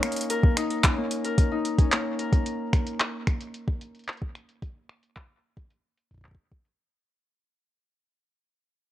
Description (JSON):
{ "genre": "IDM", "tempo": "111 BPM", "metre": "4/4", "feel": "straight", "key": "Bb minor", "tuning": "A4 = 440 Hz", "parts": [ { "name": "Celtic harp", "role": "arpeggios", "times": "0.0-5.1 s", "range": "Bb3 to Bb4", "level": "-29 LUFS", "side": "left 2 dB", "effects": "analog delay" }, { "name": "electro analog drum machine", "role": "drums", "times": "0.0-6.8 s", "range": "finger snaps, handclaps, hi-hat", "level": "-28 LUFS", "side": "equal", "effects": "low-pass filter on hats, low-pass filter on snare, low-pass filter on perc" }, { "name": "electronic kick drum", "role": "drums", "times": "0.4-6.6 s", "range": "none", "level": "-22 LUFS", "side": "equal", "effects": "none" } ], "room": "digital ambience", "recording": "dry, gritty hardware recording", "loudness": "-23 LUFS", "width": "side -13 dB against mid", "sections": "0.0-6.8 A section", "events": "fade-out 0.0-6.8", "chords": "0.0 Bbm; 2.5 N.C." }